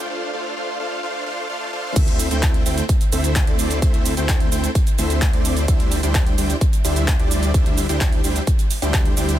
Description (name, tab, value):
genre	EDM, festival progressive house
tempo	129 BPM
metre	4/4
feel	straight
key	unclear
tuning	A4 = 440 Hz
part	big supersaw lead	riff	0.0-9.4 s	G3 to G5	-24 LUFS	equal	sidechain pumping, tape echo
part	wide detuned saw bass	bass	0.0-9.4 s	D2	-22 LUFS	equal	chorus, sidechain pumping
part	big-room dance drum kit	drums	2.0-9.4 s	crash cymbal, handclaps, hi-hat, shaker	-26 LUFS	right 2 dB	none
part	electronic kick drum	drums	2.0-9.0 s	none	-18 LUFS	equal	none
room	digital ambience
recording	dense, heavily limited modern master, high-pass filter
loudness	-17 LUFS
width	side -12 dB against mid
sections	0.0-2.0 A section; 2.0-9.4 B section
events	build-up 0.0-2.0; drop 2.0-9.4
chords	0.0 F6; 2.0 Am/D; 5.7 Cadd9/D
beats	| 0.10 0.57 1.03 1.50 | 1.96 2.43 2.89 3.36 | 3.82 4.29 4.75 5.22 | 5.68 6.15 6.61 7.08 | 7.54 8.01 8.47 8.94